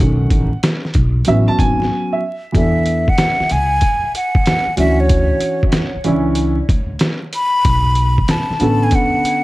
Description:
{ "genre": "hip hop, jazz-hop", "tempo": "94 BPM", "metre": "4/4", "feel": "swing 66% on 16ths", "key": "unclear", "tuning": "A4 = 439 Hz", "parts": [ { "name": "dark upright piano", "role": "accompaniment", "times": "0.0-9.4 s", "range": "D3 to A5", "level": "-17 LUFS", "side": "right 1 dB", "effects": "none" }, { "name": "upright bass", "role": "bass", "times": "0.0-8.9 s", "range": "G#1 to E2", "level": "-18 LUFS", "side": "equal", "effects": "none" }, { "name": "trip hop sampler-style drum kit", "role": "drums", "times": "0.0-9.4 s", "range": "hi-hat, kick drum, snare drum", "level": "-17 LUFS", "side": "equal", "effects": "none" }, { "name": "breathy mellow silver concert flute", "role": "melody", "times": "2.6-9.4 s", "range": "C#5 to B5", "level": "-18 LUFS", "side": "left 1 dB", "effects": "dub echo" } ], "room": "light reverb, small room ambience", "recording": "echo-heavy mix, vinyl crackle", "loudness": "-13 LUFS", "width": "side -18 dB against mid", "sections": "0.0-2.5 A section; 2.5-9.4 B section", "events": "upright piano solo 0.0-2.5; break 1.9-2.5", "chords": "0.0 B7; 1.3 A6; 2.5 E7sus4; 4.8 Dmaj9; 7.7 Bm9" }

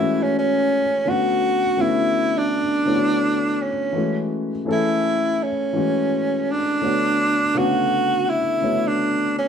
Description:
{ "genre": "soul", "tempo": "83 BPM", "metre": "4/4", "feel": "swing 58% on 16ths", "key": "unclear", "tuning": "A4 = 440 Hz", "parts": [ { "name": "breathy tenor saxophone", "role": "melody", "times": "0.0-9.5 s", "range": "C#4 to F#4", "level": "-20 LUFS", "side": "right 1 dB", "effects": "none" }, { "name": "dark baby grand piano", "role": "accompaniment", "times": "0.0-9.5 s", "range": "C#3 to C#5", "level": "-22 LUFS", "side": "left 2 dB", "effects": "none" } ], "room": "moderate large studio reverb, RT60 1.1 s", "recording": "band playing live in one room", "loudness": "-18 LUFS", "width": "side -7 dB against mid", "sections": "0.0-9.5 A section", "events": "none", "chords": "0.0 F#m7; 1.1 Bm7; 3.9 F#m7; 6.8 Bm7" }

